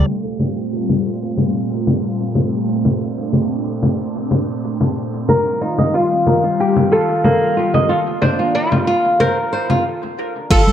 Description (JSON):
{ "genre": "organic downtempo", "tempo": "92 BPM", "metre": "4/4", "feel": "straight", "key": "G minor", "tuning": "A4 = 440 Hz", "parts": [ { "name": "airy breathy pad", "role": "sustained chords", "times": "0.0-9.8 s", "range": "Bb2 to F4", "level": "-21 LUFS", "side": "equal", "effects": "chorus, phaser, sidechain pumping" }, { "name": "flamenco guitar", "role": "arpeggios", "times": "0.0-0.1, 5.3-10.6 s", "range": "Bb3 to Eb5", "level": "-18 LUFS", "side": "right 1 dB", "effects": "analog delay" }, { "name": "warm sub bass", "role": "bass", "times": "0.0, 10.5-10.7 s", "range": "G1", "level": "-16 LUFS", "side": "equal", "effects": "sidechain pumping" }, { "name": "deep house drum kit", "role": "drums", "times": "0.1-10.7 s", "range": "congas, crash cymbal, hi-hat, shaker", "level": "-20 LUFS", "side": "left 2 dB", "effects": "dub echo" }, { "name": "oud", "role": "melody", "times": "5.6-10.7 s", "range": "D4 to Bb4", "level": "-19 LUFS", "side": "left 1 dB", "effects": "dub echo" }, { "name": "electronic kick drum", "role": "drums", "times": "10.5-10.6 s", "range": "none", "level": "-14 LUFS", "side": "equal", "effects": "none" }, { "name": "congas", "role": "percussion", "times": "10.7 s", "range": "none", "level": "-25 LUFS", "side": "right 2 dB", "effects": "none" } ], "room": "wet spring reverb, RT60 1.5 s, digital ambience", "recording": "echo-heavy mix, low-pass filter", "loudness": "-15 LUFS", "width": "side -9 dB against mid", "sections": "0.1-10.5 A section", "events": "filter sweep 0.1-10.5; stop 9.9-10.5", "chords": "0.1 Gm11; 2.7 Bbmaj9; 5.3 Eb69; 7.9 F7sus4" }